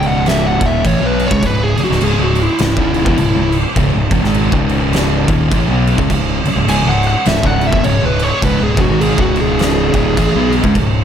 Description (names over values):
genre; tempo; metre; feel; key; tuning
stoner and doom metal; 103 BPM; 4/4; swing 60% on 8ths; C# minor; A4 = 440 Hz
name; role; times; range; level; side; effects
fuzz lead guitar; melody; 0.0-10.5 s; E4 to G#5; -18 LUFS; equal; distortion, slapback echo
string machine, violas; sustained chords; 0.0-11.0 s; C#3 to C#4; -28 LUFS; equal; none
thick fuzz guitar; riff; 0.0-11.0 s; C#2 to B3; -18 LUFS; left 8 dB; distortion
thick fuzz guitar; riff; 0.0-11.0 s; C#2 to B3; -18 LUFS; right 9 dB; distortion
fuzz fingered electric bass; bass; 0.0-11.0 s; C#1 to C#2; -20 LUFS; equal; overdrive
oversized low-tuned drum kit; drums; 0.0-10.9 s; crash cymbal, kick drum, snare drum; -17 LUFS; equal; none
room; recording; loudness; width
light reverb, small room ambience; none; -11 LUFS; side -8 dB against mid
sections
0.0-11.0 A section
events
lead electric guitar solo 0.0-11.0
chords
0.0 C#m